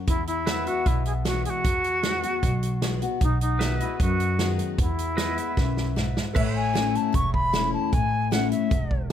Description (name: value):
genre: honky-tonk and classic country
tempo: 153 BPM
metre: 4/4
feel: straight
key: E major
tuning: A4 = 439 Hz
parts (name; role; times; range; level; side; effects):
- picked steel-string acoustic guitar; accompaniment; 0.0-9.1 s; E2 to F#4; -29 LUFS; left 7 dB; none
- bright wooden flute; melody; 0.1-9.1 s; D#4 to C#6; -27 LUFS; left 1 dB; none
- upright bass; bass; 0.1-9.1 s; E1 to F#2; -28 LUFS; right 1 dB; none
- natural country drum kit; drums; 0.1-9.0 s; crash cymbal, hi-hat, kick drum, snare drum; -27 LUFS; right 1 dB; none
- pedal steel guitar; sustained chords; 0.5-9.1 s; B4 to E5; -36 LUFS; right 1 dB; none
- warm grand piano; accompaniment; 6.3-9.1 s; A4 to E5; -38 LUFS; right 7 dB; none
room: little or no reverb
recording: none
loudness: -22 LUFS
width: side -10 dB against mid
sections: 0.0-6.4 A section; 6.4-9.1 B section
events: drum fill 5.6-6.4; grand piano fill 8.9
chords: 0.1 Eadd9; 3.2 B6; 4.8 E; 6.4 A